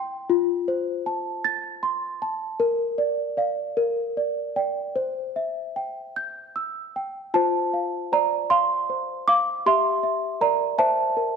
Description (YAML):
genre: classical, lullaby for celesta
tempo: 52 BPM (dotted quarters)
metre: 6/8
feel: straight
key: F major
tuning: A4 = 440 Hz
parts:
  - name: small celesta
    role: solo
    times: 0.0-11.4 s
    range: E4 to A6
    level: -22 LUFS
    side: equal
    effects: none
room: wet recital hall reverb, RT60 1.5 s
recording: none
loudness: -22 LUFS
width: side -6 dB against mid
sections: 0.0-7.3 A section; 7.3-11.4 B section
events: none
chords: 0.3 F; 2.6 Bb; 3.8 Gm/Bb; 5.0 C; 7.3 F; 9.6 Edim/G